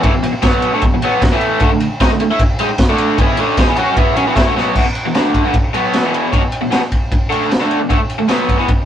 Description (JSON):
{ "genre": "garage rock duo or trio", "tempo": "153 BPM", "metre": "4/4", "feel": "straight", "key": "unclear", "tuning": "A4 = 440 Hz", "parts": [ { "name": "overdriven electric guitar", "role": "riff", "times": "0.0-8.7 s", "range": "E2 to F#4", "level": "-15 LUFS", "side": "equal", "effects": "spring reverb" }, { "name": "raw garage drum kit", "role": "drums", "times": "0.0-8.8 s", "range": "crash cymbal, kick drum, ride cymbal, snare drum", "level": "-15 LUFS", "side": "equal", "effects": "none" } ], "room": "moderate booth ambience, RT60 0.3 s", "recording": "rough rehearsal-room recording, warm saturation", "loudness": "-12 LUFS", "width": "side -10 dB against mid", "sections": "0.0-4.7 A section; 4.7-8.9 B section", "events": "drum fill 4.6", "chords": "0.0 E5; 1.6 D5; 4.7 E5; 7.9 D5" }